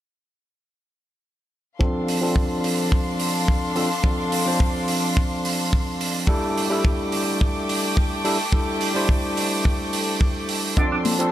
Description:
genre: nu-disco, nu disco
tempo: 107 BPM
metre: 4/4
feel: straight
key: D minor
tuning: A4 = 441 Hz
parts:
  - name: overdriven tine electric piano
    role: accompaniment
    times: 1.8-11.3 s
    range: F3 to C5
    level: -24 LUFS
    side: equal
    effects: sidechain pumping, low-pass filter, tape echo
  - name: clear chamber violin section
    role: sustained chords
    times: 1.8-11.3 s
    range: A3 to D6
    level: -28 LUFS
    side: left 2 dB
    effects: sidechain pumping
  - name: kick drum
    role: drums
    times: 1.8-10.9 s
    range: none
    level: -20 LUFS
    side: equal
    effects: none
  - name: hi-hat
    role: drums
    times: 2.1-11.3 s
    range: none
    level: -28 LUFS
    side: right 5 dB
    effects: none
  - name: electric guitar with an envelope filter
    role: riff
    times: 10.8-11.0 s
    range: D4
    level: -26 LUFS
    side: right 3 dB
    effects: lush chorus
  - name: congas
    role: percussion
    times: 11.1-11.2 s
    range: none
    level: -25 LUFS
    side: left 5 dB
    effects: none
room: light reverb, small room ambience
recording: none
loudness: -20 LUFS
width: side -12 dB against mid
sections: 1.8-11.3 A section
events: filter sweep on tine electric piano 1.8-11.3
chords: 1.8 Dm7; 6.3 A7sus4; 10.8 Dm7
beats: | 1.80 2.36 2.92 3.48 | 4.04 4.60 5.17 5.72 | 6.29 6.85 7.41 7.97 | 8.53 9.09 9.65 10.21 | 10.77

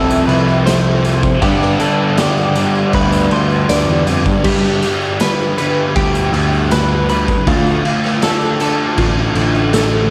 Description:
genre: rock, shoegaze and dream pop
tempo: 79 BPM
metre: 4/4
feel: straight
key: unclear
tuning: A4 = 440 Hz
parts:
  - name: direct-recorded clean electric guitar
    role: arpeggios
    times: 0.0-10.1 s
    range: F4 to C6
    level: -22 LUFS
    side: equal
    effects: analog chorus, cassette tape, analog delay
  - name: biting overdriven guitar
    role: riff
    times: 0.0-4.4 s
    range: F2 to D4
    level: -20 LUFS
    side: equal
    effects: reverse reverb, cassette tape
  - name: thick fuzz guitar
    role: riff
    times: 0.0-10.1 s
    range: F2 to D4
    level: -21 LUFS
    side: equal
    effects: distortion, analog chorus, cassette tape
  - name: fuzz picked electric bass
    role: bass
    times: 0.0-10.1 s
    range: A1 to G2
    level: -19 LUFS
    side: equal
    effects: overdrive
  - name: tambourine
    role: percussion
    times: 0.1-9.9 s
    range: none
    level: -36 LUFS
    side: equal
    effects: none
  - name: raw garage drum kit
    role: drums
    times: 0.3-9.9 s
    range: crash cymbal, kick drum, snare drum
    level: -21 LUFS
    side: equal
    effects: cassette tape
room: light reverb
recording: home recording on cassette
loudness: -14 LUFS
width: mono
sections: 0.0-4.5 A section; 4.5-10.1 A section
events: none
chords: 0.0 F; 1.4 G; 7.5 Dm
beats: 0.66 | 1.42 2.18 2.94 3.69 | 4.45 5.21 5.96 6.72 | 7.47 8.22 8.98 9.73

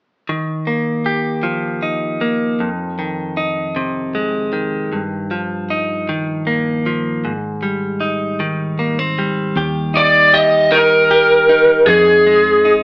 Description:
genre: pop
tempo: 52 BPM (dotted quarters)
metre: 6/8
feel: straight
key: Eb major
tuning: A4 = 445 Hz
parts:
  - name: direct-recorded clean electric guitar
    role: accompaniment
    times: 0.3-12.8 s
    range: F2 to G4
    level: -18 LUFS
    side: equal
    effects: none
  - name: vintage muted fingered electric bass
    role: bass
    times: 9.6-12.8 s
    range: Eb2 to F2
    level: -25 LUFS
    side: equal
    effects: none
  - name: lead guitar through a small cranked amp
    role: melody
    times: 10.0-12.7 s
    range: Ab4 to Eb5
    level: -8 LUFS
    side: equal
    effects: overdrive
room: moderate large studio reverb, RT60 0.9 s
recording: band playing live in one room, AM radio sound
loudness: -13 LUFS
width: side -27 dB against mid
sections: 0.3-9.6 A section; 9.6-12.8 B section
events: none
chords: 0.3 Ebadd9; 2.6 Fm7; 4.9 Ebadd9/G; 7.2 Abmaj7; 9.6 Eb; 11.9 Fm7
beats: | 0.29 1.45 | 2.61 3.77 | 4.93 6.09 | 7.25 8.40 | 9.56 10.72 | 11.88

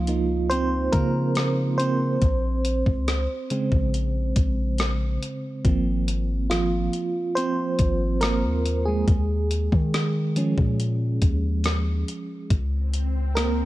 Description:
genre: contemporary R&B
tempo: 70 BPM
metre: 4/4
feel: straight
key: Ab major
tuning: A4 = 440 Hz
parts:
  - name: FM electric piano with tremolo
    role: accompaniment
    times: 0.0-13.7 s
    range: Db3 to C5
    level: -25 LUFS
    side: right 2 dB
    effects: none
  - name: long sustained 808-style bass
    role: bass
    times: 0.0-13.7 s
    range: Ab1 to Eb3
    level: -24 LUFS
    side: left 1 dB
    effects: none
  - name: crisp 8-bit digital drum machine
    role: drums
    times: 0.1-13.6 s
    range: hi-hat, kick drum, rim click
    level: -24 LUFS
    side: left 1 dB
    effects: vintage 12-bit sampler grit
  - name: swell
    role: sound effects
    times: 12.8-13.7 s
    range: none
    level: -32 LUFS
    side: right 1 dB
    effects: none
room: little or no reverb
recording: dark, warm production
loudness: -21 LUFS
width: side -16 dB against mid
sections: 0.0-13.7 A section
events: FM electric piano solo 0.0-13.7; swell 12.8-13.7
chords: 0.0 Db69; 2.2 Bbm9; 5.6 Ab69; 9.1 Eb9sus4; 12.5 Db5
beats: 0.50 1.36 | 2.22 3.08 3.93 4.79 | 5.65 6.50 7.36 8.22 | 9.08 9.93 10.79 11.65 | 12.50 13.36

